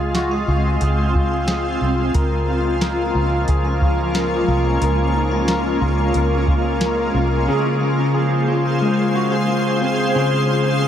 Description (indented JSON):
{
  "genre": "dream pop",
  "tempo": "90 BPM",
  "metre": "4/4",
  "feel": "straight",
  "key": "Db major",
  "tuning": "A4 = 441 Hz",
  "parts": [
    { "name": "shimmering ambient pad", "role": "sustained chords", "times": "0.0-10.9 s", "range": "F3 to C6", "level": "-21 LUFS", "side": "equal", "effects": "chorus, built-in reverb" },
    { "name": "electric guitar at the edge of break-up", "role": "arpeggios", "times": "0.0-10.9 s", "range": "Db3 to Bb4", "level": "-20 LUFS", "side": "left 1 dB", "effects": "lush chorus, tape echo" },
    { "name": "vintage muted fingered electric bass", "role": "bass", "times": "0.0-7.5 s", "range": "C2 to Db2", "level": "-21 LUFS", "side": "equal", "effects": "none" },
    { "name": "soft vintage rhythm box", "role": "drums", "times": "0.1-7.0 s", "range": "hi-hat, kick drum, snare drum", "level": "-22 LUFS", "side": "equal", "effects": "overdrive" }
  ],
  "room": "wet huge ambient reverb, RT60 7.3 s",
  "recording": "dreamy mix soaked in reverb",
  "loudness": "-16 LUFS",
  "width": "side -9 dB against mid",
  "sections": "0.0-7.5 A section; 7.5-10.9 B section",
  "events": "none",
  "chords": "0.0 Db; 2.1 Bbm7; 7.5 Dbmaj7"
}